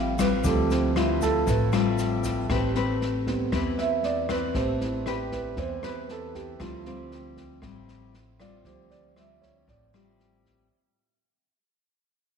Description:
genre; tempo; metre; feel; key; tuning
bossa nova; 117 BPM; 4/4; straight; unclear; A4 = 439 Hz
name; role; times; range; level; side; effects
dark grand piano; accompaniment; 0.0-10.7 s; F3 to F5; -28 LUFS; right 7 dB; none
nylon-string guitar; accompaniment; 0.0-10.7 s; A2 to B4; -29 LUFS; left 9 dB; none
upright bass; bass; 0.0-10.7 s; A1 to E2; -31 LUFS; equal; none
open jazz drum kit; drums; 0.2-10.5 s; kick drum, rim click, snare drum; -34 LUFS; left 1 dB; none
tube shaker; percussion; 0.2-2.5 s; none; -44 LUFS; left 13 dB; none
room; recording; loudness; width
moderate echo chamber reverb, RT60 2.1 s; 1960s-style stereo with parts hard left and right; -23 LUFS; side -6 dB against mid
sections
0.0-10.7 A section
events
fade-out 0.0-10.7; grand piano solo 0.0-10.7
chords
0.0 Dm11; 2.5 Am9; 6.6 Dm11

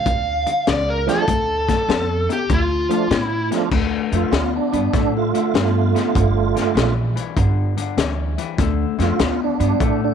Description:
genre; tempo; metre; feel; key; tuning
electric blues shuffle; 99 BPM; 4/4; swing 67% on 8ths; unclear; A4 = 440 Hz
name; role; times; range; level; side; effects
lead guitar through a small cranked amp; melody; 0.0-3.5 s; F4 to F5; -20 LUFS; equal; overdrive
electric guitar through a small old amp; riff; 0.0-10.1 s; G2 to B3; -24 LUFS; left 13 dB; none
upright bass; bass; 0.1-10.1 s; G1 to A2; -22 LUFS; right 2 dB; none
crunchy breakbeat drum kit; drums; 0.1-10.0 s; crash cymbal, hi-hat, kick drum, snare drum; -22 LUFS; left 3 dB; none
tonewheel organ; accompaniment; 1.1-10.1 s; F3 to F4; -22 LUFS; right 15 dB; slow rotary speaker, overdrive, chorus vibrato
room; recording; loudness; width
little or no reverb; 1960s-style stereo with parts hard left and right; -17 LUFS; side -7 dB against mid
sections
0.0-3.7 A section; 3.7-10.1 B section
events
none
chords
0.0 G5; 1.3 Dm; 6.1 Gm; 8.6 Dm

